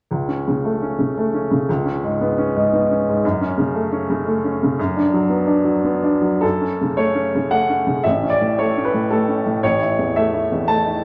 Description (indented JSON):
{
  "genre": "classical, romantic character piece for solo piano",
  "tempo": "114 BPM",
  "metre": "3/4",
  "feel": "rubato",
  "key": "F# minor",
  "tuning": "A4 = 440 Hz",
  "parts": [
    { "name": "clear baby grand piano", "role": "solo", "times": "0.1-11.0 s", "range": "A1 to A5", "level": "-19 LUFS", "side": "equal", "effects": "none" }
  ],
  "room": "wet large studio reverb, RT60 1.3 s",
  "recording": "none",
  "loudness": "-19 LUFS",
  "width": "mono",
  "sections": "0.1-6.4 A section; 6.4-11.0 B section",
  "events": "none",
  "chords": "0.1 A/C#; 1.7 C#5; 3.2 F#m; 4.8 Bm/F#; 6.4 F#m; 8.0 Aadd9; 9.6 A"
}